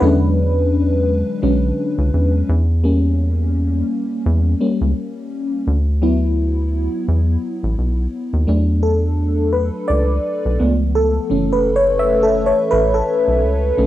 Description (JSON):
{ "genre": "R&B, neo-soul", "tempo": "85 BPM", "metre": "4/4", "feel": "swing 57% on 16ths", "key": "unclear", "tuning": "A4 = 440 Hz", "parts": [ { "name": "FM electric piano with soft pad layer", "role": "accompaniment", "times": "0.0-13.9 s", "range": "D3 to E5", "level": "-17 LUFS", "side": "left 1 dB", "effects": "chorus, phaser, cassette tape" }, { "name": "rubbery square bass", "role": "bass", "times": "0.0-13.9 s", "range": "F#1 to E2", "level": "-17 LUFS", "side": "equal", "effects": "none" } ], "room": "moderate studio reverb, RT60 0.6 s", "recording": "home recording on cassette", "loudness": "-15 LUFS", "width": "side -14 dB against mid", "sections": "0.0-8.5 A section; 8.5-13.9 B section", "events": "FM electric piano solo 0.0-8.5, 8.5-13.9", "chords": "0.0 E13; 2.5 C#dim7; 5.7 D69; 8.5 E9sus4; 10.6 C#7b13; 11.3 F#m7" }